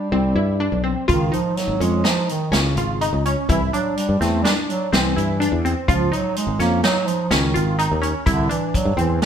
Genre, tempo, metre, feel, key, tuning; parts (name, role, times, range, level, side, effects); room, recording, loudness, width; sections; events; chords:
progressive instrumental, band music in an uneven meter; 125 BPM; 5/4; straight; A4 = 441 Hz
warm bass clarinet; melody; 0.0-9.3 s; Db3 to Bb3; -23 LUFS; right 3 dB
tight sequenced synth; arpeggios; 0.0-9.3 s; C4 to F4; -23 LUFS; left 1 dB; chorus, phaser
sustaining fretless electric bass; bass; 0.1-9.2 s; Ab1 to G2; -22 LUFS; left 1 dB
vintage drum kit; drums; 1.1-9.3 s; hi-hat, kick drum, snare drum; -23 LUFS; equal
moderate stone room reverb, RT60 1.0 s; band playing live in one room; -17 LUFS; side -8 dB against mid
0.0-9.3 A section
0.0 Cmaj7; 1.1 Dbsus2; 3.5 C; 5.9 Dbsus2; 8.3 C